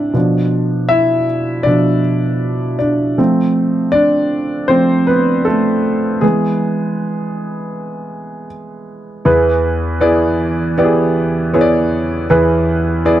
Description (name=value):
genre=pop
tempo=79 BPM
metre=4/4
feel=straight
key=unclear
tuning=A4 = 439 Hz
part: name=warm concert grand piano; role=solo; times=0.0-13.2 s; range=E2 to E5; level=-13 LUFS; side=equal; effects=none
room=light reverb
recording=dry, close 1970s-style studio recording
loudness=-12 LUFS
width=side -12 dB against mid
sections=0.0-9.3 A section; 9.3-13.2 B section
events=grand piano solo 0.0-9.3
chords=0.1 Bdim; 3.2 F; 6.2 E